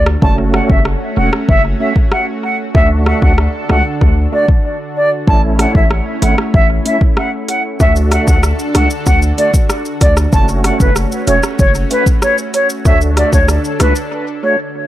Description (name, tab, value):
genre	dancehall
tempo	95 BPM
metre	4/4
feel	straight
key	unclear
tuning	A4 = 440 Hz
part	silver concert flute	melody	0.0-14.6 s	B4 to A5	-16 LUFS	equal	tape echo
part	lush unison pad	sustained chords	0.0-14.9 s	D3 to A4	-22 LUFS	right 1 dB	chorus, sidechain pumping
part	hard-hitting 808-style bass	bass	0.0-13.9 s	E1 to D2	-14 LUFS	equal	none
part	deep house drum kit	drums	0.1-14.1 s	hi-hat, kick drum, rim click, shaker	-14 LUFS	equal	none
part	bright tonewheel organ	accompaniment	0.2-14.6 s	A3 to F#4	-20 LUFS	right 3 dB	chorus vibrato, slow rotary speaker, tape echo
room	light reverb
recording	echo-heavy mix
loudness	-10 LUFS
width	side -14 dB against mid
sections	0.0-14.9 A section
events	break 4.6-5.3, 14.1-14.9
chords	0.2 F#m; 2.7 D; 5.3 A; 7.8 D; 10.3 F#m; 12.9 D